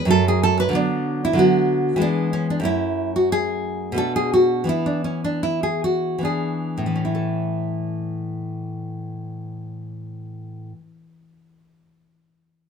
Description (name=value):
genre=classical, baroque-style dance for nylon-string guitar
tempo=64-96 BPM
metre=3/4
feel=rubato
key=A major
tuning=A4 = 439 Hz
part: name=nylon-string guitar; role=solo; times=0.0-11.1 s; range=F#2 to B4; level=-20 LUFS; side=equal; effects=none
room=light reverb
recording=minimal, uncompressed stereo recording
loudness=-19 LUFS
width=side -6 dB against mid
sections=0.0-7.1 A section; 7.1-12.4 B section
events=slowing down 1.7-7.1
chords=0.1 F#5; 0.7 Bm/D; 2.0 E; 2.6 F#m; 4.0 Bm7; 4.7 E7; 7.1 A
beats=0.11 | 0.74 1.38 2.00 | 2.64 3.30 3.97 | 4.67 5.42 6.24 | 7.14 8.03 8.91 | 9.78 10.63